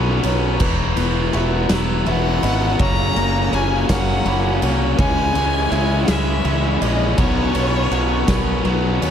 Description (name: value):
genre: post-rock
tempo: 55 BPM (dotted quarters)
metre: 6/8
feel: straight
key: E lydian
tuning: A4 = 441 Hz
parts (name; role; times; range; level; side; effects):
- hand-pumped harmonium; sustained chords; 0.0-9.1 s; E3 to F#5; -32 LUFS; right 2 dB; none
- felt-muted upright piano; arpeggios; 0.0-9.1 s; A#4 to B5; -32 LUFS; right 3 dB; slapback echo
- twelve-string electric guitar; arpeggios; 0.0-9.1 s; E2 to G#4; -27 LUFS; left 3 dB; slapback echo
- biting overdriven guitar; riff; 0.0-9.1 s; F#2 to E4; -24 LUFS; left 13 dB; none
- tight distorted guitar; riff; 0.0-9.1 s; F#2 to E4; -26 LUFS; right 11 dB; distortion
- fuzz fingered electric bass; bass; 0.0-9.1 s; E1 to D#2; -21 LUFS; equal; overdrive
- oversized low-tuned drum kit; drums; 0.2-9.1 s; crash cymbal, kick drum, ride cymbal, snare drum; -22 LUFS; right 1 dB; none
- clear violin; melody; 2.1-9.0 s; C#5 to A#5; -24 LUFS; left 2 dB; slapback echo
room: light reverb, small room ambience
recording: none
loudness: -16 LUFS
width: side -8 dB against mid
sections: 0.0-9.1 A section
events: none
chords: 0.0 Bsus2; 0.6 Esus2; 2.8 F#add9; 5.0 C#madd9; 7.2 Bsus2